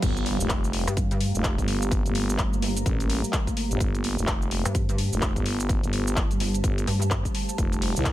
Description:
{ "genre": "bass house", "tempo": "127 BPM", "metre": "4/4", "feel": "swing 60% on 16ths", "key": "G minor", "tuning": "A4 = 439 Hz", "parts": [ { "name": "sweeping resonant pad", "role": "sustained chords", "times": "0.0-8.1 s", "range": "F3 to Bb3", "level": "-34 LUFS", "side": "right 2 dB", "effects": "chorus, sidechain pumping" }, { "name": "growling FM bass", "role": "bass", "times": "0.0-8.1 s", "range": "F1 to C2", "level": "-27 LUFS", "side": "equal", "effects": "overdrive, sidechain pumping" }, { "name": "electronic kick drum", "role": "drums", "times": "0.0-8.1 s", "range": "none", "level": "-27 LUFS", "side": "equal", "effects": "none" }, { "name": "house drum kit", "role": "drums", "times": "0.0-8.1 s", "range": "cabasa, crash cymbal, handclaps, hi-hat, ride cymbal", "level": "-31 LUFS", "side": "left 1 dB", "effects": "none" }, { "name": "riser and impact", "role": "sound effects", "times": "0.0-1.9 s", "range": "none", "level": "-34 LUFS", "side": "equal", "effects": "none" }, { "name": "granular cloud pad", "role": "texture", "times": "0.0-8.1 s", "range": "G4 to Bb5", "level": "-37 LUFS", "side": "equal", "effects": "built-in reverb, sidechain pumping" }, { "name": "pulsing pluck wobble bass", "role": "bass", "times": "0.9-7.2 s", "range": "G1 to G2", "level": "-26 LUFS", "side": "equal", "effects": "chorus, sidechain pumping" } ], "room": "digital ambience", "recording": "none", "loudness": "-23 LUFS", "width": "side -14 dB against mid", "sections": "0.0-8.1 A section", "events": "drop 0.0-8.1; impact 0.0-1.9", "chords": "0.0 Gmadd9; 7.6 Fadd9", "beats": "| 0.02 0.50 0.97 1.44 | 1.91 2.39 2.86 3.33 | 3.80 4.28 4.75 5.22 | 5.69 6.17 6.64 7.11 | 7.58 8.06" }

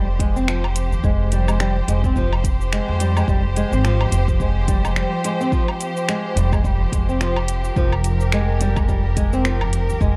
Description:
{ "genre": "organic downtempo", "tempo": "107 BPM", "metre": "4/4", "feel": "swing 58% on 16ths", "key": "F minor", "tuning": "A4 = 438 Hz", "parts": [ { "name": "clear symphonic string section", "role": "sustained chords", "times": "0.0-10.2 s", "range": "F3 to C5", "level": "-29 LUFS", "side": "equal", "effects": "sidechain pumping" }, { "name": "flamenco guitar", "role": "arpeggios", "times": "0.0-10.2 s", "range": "F3 to C4", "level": "-27 LUFS", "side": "equal", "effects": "digital delay" }, { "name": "upright bass", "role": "bass", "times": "0.0-10.2 s", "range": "F1 to F2", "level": "-22 LUFS", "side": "equal", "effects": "sidechain pumping" }, { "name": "afro-pop drum kit", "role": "drums", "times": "0.2-10.1 s", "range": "cabasa, finger snaps, hi-hat, woodblock", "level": "-30 LUFS", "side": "equal", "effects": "none" }, { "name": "electronic kick drum", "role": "drums", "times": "0.2-10.1 s", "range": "none", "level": "-23 LUFS", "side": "equal", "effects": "none" }, { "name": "udu", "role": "percussion", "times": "9.6-9.7 s", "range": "none", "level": "-34 LUFS", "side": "equal", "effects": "none" } ], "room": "light reverb, small room ambience", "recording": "dark, warm production", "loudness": "-20 LUFS", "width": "mono", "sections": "0.0-10.2 A section", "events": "none", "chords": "0.0 Fmadd9", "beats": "0.48 | 1.04 1.60 2.16 2.72 | 3.28 3.84 4.40 4.96 | 5.52 6.08 6.65 7.21 | 7.77 8.33 8.89 9.45 | 10.01" }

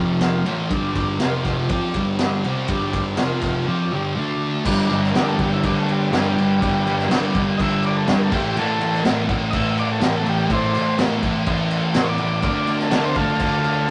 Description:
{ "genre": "garage rock duo or trio", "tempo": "123 BPM", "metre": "4/4", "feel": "straight", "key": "unclear", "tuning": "A4 = 440 Hz", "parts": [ { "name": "combo organ", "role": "sustained chords", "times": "0.0-13.9 s", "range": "C4 to A5", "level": "-34 LUFS", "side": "equal", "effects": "none" }, { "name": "thick fuzz guitar", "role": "riff", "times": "0.0-13.9 s", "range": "F2 to F4", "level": "-23 LUFS", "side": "equal", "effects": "distortion" }, { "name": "vintage drum kit", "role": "drums", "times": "0.2-13.8 s", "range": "crash cymbal, kick drum, ride cymbal, snare drum", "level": "-26 LUFS", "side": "equal", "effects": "none" }, { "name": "overdriven combo organ", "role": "melody", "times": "5.2-13.9 s", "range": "F#3 to E5", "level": "-27 LUFS", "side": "equal", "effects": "none" } ], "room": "moderate studio ambience, RT60 0.5 s", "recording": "rough rehearsal-room recording, tube saturation, nothing above 10.3 kHz", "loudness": "-20 LUFS", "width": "mono", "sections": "0.0-4.7 A section; 4.7-13.9 B section", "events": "transistor combo organ fill 0.0-0.7, 3.2-4.7", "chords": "0.0 F5; 0.7 G5; 1.2 F5; 1.7 G5; 3.2 F5; 3.7 G5; 4.2 D5; 4.7 G; 8.3 Am; 12.4 Dm", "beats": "0.21 | 0.71 1.21 1.70 2.20 | 2.69 3.19 3.68 4.17 | 4.67 5.16 5.64 6.13 | 6.62 7.11 7.59 8.08 | 8.56 9.05 9.53 10.02 | 10.50 10.99 11.47 11.96 | 12.44 12.93 13.41 13.89" }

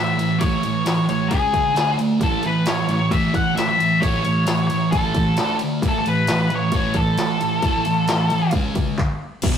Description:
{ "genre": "garage rock duo or trio", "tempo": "133 BPM", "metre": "4/4", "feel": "straight", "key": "A major", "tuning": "A4 = 440 Hz", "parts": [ { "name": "octave-fuzz lead guitar", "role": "melody", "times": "0.0-8.5 s", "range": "G#4 to F#5", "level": "-22 LUFS", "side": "left 1 dB", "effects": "distortion" }, { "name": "thick fuzz guitar", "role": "riff", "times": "0.0-9.6 s", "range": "E2 to D4", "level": "-20 LUFS", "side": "right 1 dB", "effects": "distortion" }, { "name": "industrial drum kit", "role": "drums", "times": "0.2-9.5 s", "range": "crash cymbal, handclaps, kick drum, ride cymbal, snare drum", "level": "-24 LUFS", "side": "left 1 dB", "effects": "none" } ], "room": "moderate stone room reverb, RT60 1.1 s", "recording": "rough rehearsal-room recording, tube saturation", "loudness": "-17 LUFS", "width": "side -8 dB against mid", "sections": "0.0-9.4 A section", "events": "stop 9.0-9.4", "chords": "0.0 A; 1.3 C#5; 1.8 D5; 2.2 A; 5.4 D5; 5.8 A5; 8.5 C#5; 9.0 N.C.", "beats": "| 0.41 0.86 1.31 1.76 | 2.21 2.65 3.10 3.55 | 4.00 4.46 4.91 5.36 | 5.81 6.26 6.72 7.17 | 7.63 8.08 8.53 8.99 | 9.44" }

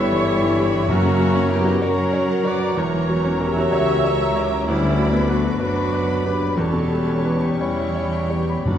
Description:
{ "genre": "classical, romantic movement for piano and orchestra", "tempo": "53-66 BPM (dotted quarters)", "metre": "12/8", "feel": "rubato", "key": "unclear", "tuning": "A4 = 440 Hz", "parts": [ { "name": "clear grand piano", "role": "melody", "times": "0.0-8.8 s", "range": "D2 to B5", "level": "-22 LUFS", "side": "left 1 dB", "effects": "none" }, { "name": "warm studio violin section", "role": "melody", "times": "0.0-8.8 s", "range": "G5 to D6", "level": "-39 LUFS", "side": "left 2 dB", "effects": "none" }, { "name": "bright concert flute", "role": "second line", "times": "0.0-8.8 s", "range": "A#5 to B5", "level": "-33 LUFS", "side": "left 2 dB", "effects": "none" }, { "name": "rich studio violin section", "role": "second line", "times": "0.0-8.8 s", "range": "B4 to B5", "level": "-33 LUFS", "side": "left 3 dB", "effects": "none" }, { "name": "warm clarinet", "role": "second line", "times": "0.0-8.8 s", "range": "C#4 to C#5", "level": "-30 LUFS", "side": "left 2 dB", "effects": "none" }, { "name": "warm cor anglais", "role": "second line", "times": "0.0-8.8 s", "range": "C#5 to E5", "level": "-35 LUFS", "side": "right 2 dB", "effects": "none" }, { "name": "mellow bassoon", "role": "accompaniment", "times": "0.0-8.8 s", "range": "F#3 to G3", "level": "-31 LUFS", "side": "right 3 dB", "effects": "none" }, { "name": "warm studio viola section", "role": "accompaniment", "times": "0.0-8.8 s", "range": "E4 to E5", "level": "-26 LUFS", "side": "right 2 dB", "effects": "none" }, { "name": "mellow French horn section", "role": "sustained chords", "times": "0.0-8.8 s", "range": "G3 to G4", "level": "-26 LUFS", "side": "left 4 dB", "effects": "none" }, { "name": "warm studio cello section", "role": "bass", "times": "0.0-8.8 s", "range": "C#2 to F#3", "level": "-28 LUFS", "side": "right 1 dB", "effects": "none" }, { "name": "warm studio double bass section", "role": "bass", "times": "0.0-8.8 s", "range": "E1 to F#2", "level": "-28 LUFS", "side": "right 2 dB", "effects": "none" }, { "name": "timpani", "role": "percussion", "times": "0.9-1.8, 8.7-8.8 s", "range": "F#2", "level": "-26 LUFS", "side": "equal", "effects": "none" } ], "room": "moderate scoring stage reverb, RT60 1.6 s", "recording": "dark, warm production, vinyl crackle", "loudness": "-17 LUFS", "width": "side -9 dB against mid", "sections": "0.0-8.8 A section", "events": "none", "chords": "0.0 Em; 0.9 F#; 2.8 F#7/E; 4.7 Bm/D; 6.6 C#m7b5/E", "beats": "| 0.89 1.81 2.78 3.73 | 4.68 5.62 6.57 7.59 | 8.65" }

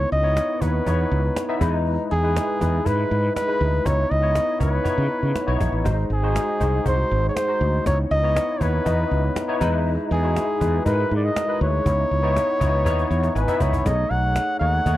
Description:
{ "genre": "polished 1980s jazz-funk pop", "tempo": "120 BPM", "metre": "4/4", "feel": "straight", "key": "C# minor", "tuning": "A4 = 440 Hz", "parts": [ { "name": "warm flugelhorn", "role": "melody", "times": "0.0-15.0 s", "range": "G#4 to F#5", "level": "-24 LUFS", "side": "equal", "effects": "none" }, { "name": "barky tine electric piano", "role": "accompaniment", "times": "0.0-15.0 s", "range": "G#3 to B5", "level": "-25 LUFS", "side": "left 2 dB", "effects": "overdrive, ensemble chorus" }, { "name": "mellow fretless electric bass", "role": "bass", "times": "0.0-15.0 s", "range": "G#1 to C#3", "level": "-22 LUFS", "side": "equal", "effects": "none" }, { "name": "cajon", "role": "drums", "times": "0.1-15.0 s", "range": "none", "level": "-29 LUFS", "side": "equal", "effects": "none" } ], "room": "light reverb", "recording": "dry, close 1970s-style studio recording", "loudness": "-19 LUFS", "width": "side -14 dB against mid", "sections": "0.0-13.9 A section; 13.9-15.0 B section", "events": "drum fill 12.9-13.9; tine electric piano fill 12.9-13.9", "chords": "0.0 C#m9; 1.6 Emaj7; 3.9 C#m9; 5.9 G#7; 7.9 C#m9; 9.6 Emaj7; 11.9 C#m9; 13.9 B13", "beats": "0.36 0.86 1.36 | 1.86 2.36 2.86 3.36 | 3.86 4.36 4.86 5.36 | 5.86 6.36 6.86 7.36 | 7.86 8.36 8.86 9.36 | 9.86 10.36 10.86 11.36 | 11.86 12.36 12.86 13.36 | 13.86 14.36 14.86" }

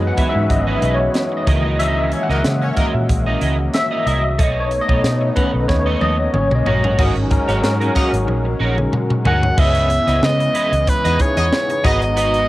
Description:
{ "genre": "polished 1980s jazz-funk pop", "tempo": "92 BPM", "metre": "4/4", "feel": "swing 54% on 16ths", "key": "C# dorian", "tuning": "A4 = 440 Hz", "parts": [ { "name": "overdriven tine electric piano", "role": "accompaniment", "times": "0.0-12.5 s", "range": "D#3 to A#5", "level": "-21 LUFS", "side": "left 1 dB", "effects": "fast tremolo, ensemble chorus, cassette tape" }, { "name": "chorused pulse-width pad", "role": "sustained chords", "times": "0.0-12.5 s", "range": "C#3 to A#5", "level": "-25 LUFS", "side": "equal", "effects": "cassette tape" }, { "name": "electric guitar at the edge of break-up", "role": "riff", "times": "0.0-12.5 s", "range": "C#4 to F#5", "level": "-25 LUFS", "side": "right 3 dB", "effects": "analog chorus, cassette tape" }, { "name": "vintage muted fingered electric bass", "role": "bass", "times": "0.0-12.5 s", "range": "G#1 to C#3", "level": "-20 LUFS", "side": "equal", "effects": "none" }, { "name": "crisp fusion drum kit", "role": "drums", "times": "0.2-12.5 s", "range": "crash cymbal, hi-hat, kick drum, snare drum, toms", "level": "-20 LUFS", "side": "equal", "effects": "cassette tape" }, { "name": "clear horn section", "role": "second line", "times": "2.1-2.9, 7.0-12.1 s", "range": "A#3 to D#5", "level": "-26 LUFS", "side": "left 1 dB", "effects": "cassette tape" }, { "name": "clear soprano saxophone", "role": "melody", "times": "9.3-12.5 s", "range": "B4 to F#5", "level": "-18 LUFS", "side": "equal", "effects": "cassette tape" } ], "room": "light reverb, small room ambience", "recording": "home recording on cassette", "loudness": "-15 LUFS", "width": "side -16 dB against mid", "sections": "0.0-7.0 A section; 7.0-9.6 B section; 9.6-12.5 C section", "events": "tine electric piano solo 0.0-7.0; drum fill 5.7-7.0, 8.3-9.6", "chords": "0.0 F#13sus4; 1.5 C#m69; 4.4 B9; 6.3 G#9sus4; 9.6 C#m9; 11.8 G#m7", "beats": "0.50 1.15 | 1.80 2.44 3.09 3.74 | 4.39 5.04 5.69 6.34 | 6.99 7.63 8.28 8.93 | 9.58 10.23 10.87 11.52 | 12.17" }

